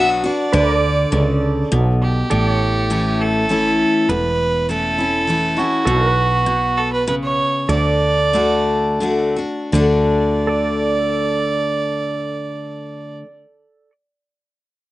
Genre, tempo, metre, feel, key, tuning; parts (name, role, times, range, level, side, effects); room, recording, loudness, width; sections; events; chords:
honky-tonk and classic country; 81-102 BPM; 3/4; straight; D major; A4 = 438 Hz
clear fiddle; melody; 0.0-13.2 s; F#4 to D5; -20 LUFS; right 2 dB; slapback echo
picked steel-string acoustic guitar; accompaniment; 0.0-13.3 s; E2 to F#4; -19 LUFS; left 2 dB
pedal steel guitar; sustained chords; 0.0-13.9 s; A4 to F#5; -25 LUFS; right 3 dB; lush chorus
woody fretless electric bass; bass; 0.0-13.2 s; E1 to D2; -21 LUFS; right 1 dB
little or no reverb; recorded outdoors, with no room sound, nothing above 10.3 kHz; -15 LUFS; side -17 dB against mid
0.0-2.3 A section; 2.3-9.7 B section; 9.7-14.2 C section
slowing down 5.9-9.7
0.0 Bm; 0.5 D5; 2.3 A; 5.9 B5; 7.7 D